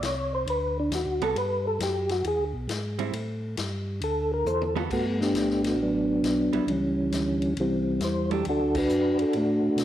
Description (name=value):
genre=soul jazz organ trio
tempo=135 BPM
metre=4/4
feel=swing 67% on 8ths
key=G major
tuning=A4 = 441 Hz
part: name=percussive tonewheel organ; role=melody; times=0.0-9.8 s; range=E3 to C#5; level=-24 LUFS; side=equal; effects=slow rotary speaker, chorus vibrato
part: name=tonewheel organ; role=bass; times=0.0-9.8 s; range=G1 to B2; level=-32 LUFS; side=equal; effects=slow rotary speaker
part: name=vintage drum kit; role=drums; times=0.0-9.8 s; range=crash cymbal, hi-hat, kick drum, ride cymbal, snare drum, toms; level=-37 LUFS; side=left 4 dB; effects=none
part: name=vintage hollow-body jazz guitar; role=accompaniment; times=1.2-8.4 s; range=F#3 to A4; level=-34 LUFS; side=right 10 dB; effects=none
room=moderate echo chamber reverb, RT60 1.4 s, small room ambience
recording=1960s-style stereo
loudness=-24 LUFS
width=side -12 dB against mid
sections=0.0-4.9 A section; 4.9-9.8 B section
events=tonewheel organ solo 0.0-4.9; drum fill 4.5-4.9; band accent 8.7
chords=0.5 D7b9; 1.4 Gmaj7; 2.2 E7; 3.1 Gsus2; 4.0 Dadd9; 4.9 Gmaj9; 6.7 C#dim; 7.6 C69; 8.5 Bm7